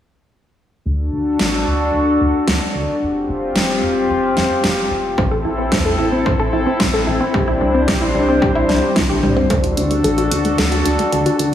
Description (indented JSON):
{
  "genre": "synthwave",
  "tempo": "111 BPM",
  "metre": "4/4",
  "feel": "straight",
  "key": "unclear",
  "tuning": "A4 = 442 Hz",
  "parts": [
    { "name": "chorused pulse-width pad", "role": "sustained chords", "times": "0.9-11.5 s", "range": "G3 to C5", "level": "-18 LUFS", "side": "left 1 dB", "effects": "sidechain pumping" },
    { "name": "chorused synth bass", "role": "bass", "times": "0.9-11.5 s", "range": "F1 to E2", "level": "-22 LUFS", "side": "equal", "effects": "none" },
    { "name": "pop drum kit", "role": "drums", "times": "1.4-11.5 s", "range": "hi-hat, snare drum, toms", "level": "-21 LUFS", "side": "equal", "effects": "studio ambience, slapback echo" },
    { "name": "wide unison pluck", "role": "arpeggios", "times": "5.2-11.5 s", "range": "G3 to C5", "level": "-20 LUFS", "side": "equal", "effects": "tape echo, slapback echo" },
    { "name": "electronic kick drum", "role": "drums", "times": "5.2-9.6 s", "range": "none", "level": "-21 LUFS", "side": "equal", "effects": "studio ambience" }
  ],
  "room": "wet lush hall reverb, RT60 2.0 s, digital ambience",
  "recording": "big arena sound, small room ambience",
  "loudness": "-14 LUFS",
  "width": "side -10 dB against mid",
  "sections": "0.9-9.5 A section; 9.5-11.5 B section",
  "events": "drum fill 9.0-9.5",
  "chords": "0.9 D; 3.0 Fsus2; 5.2 Am; 7.3 Cadd9; 9.5 D"
}